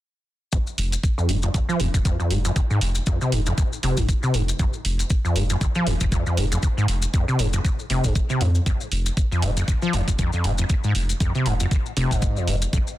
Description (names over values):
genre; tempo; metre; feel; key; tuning
acid house; 118 BPM; 4/4; swing 56% on 16ths; F minor pentatonic; A4 = 438 Hz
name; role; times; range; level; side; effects
acid bass, saw; riff; 0.5-12.8 s; Eb2 to F3; -23 LUFS; equal; overdrive, analog chorus, cassette tape, sidechain pumping, ping-pong delay
electronic hi-hat; drums; 0.5-12.8 s; none; -31 LUFS; right 2 dB; none
electronic kick drum; drums; 0.5-12.8 s; none; -22 LUFS; equal; none
maracas; percussion; 0.5-13.0 s; none; -33 LUFS; left 5 dB; none
saturated sub bass; bass; 0.8-12.7 s; F1 to F2; -24 LUFS; equal; tube saturation, sidechain pumping
room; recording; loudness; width
little or no reverb; dense, heavily limited modern master; -20 LUFS; side -15 dB against mid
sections
0.5-13.0 A section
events
none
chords
0.5 Fm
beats
| 0.53 1.04 1.54 2.05 | 2.56 3.07 3.58 4.09 | 4.59 5.10 5.61 6.12 | 6.63 7.14 7.65 8.15 | 8.66 9.17 9.68 10.19 | 10.70 11.21 11.71 12.22 | 12.73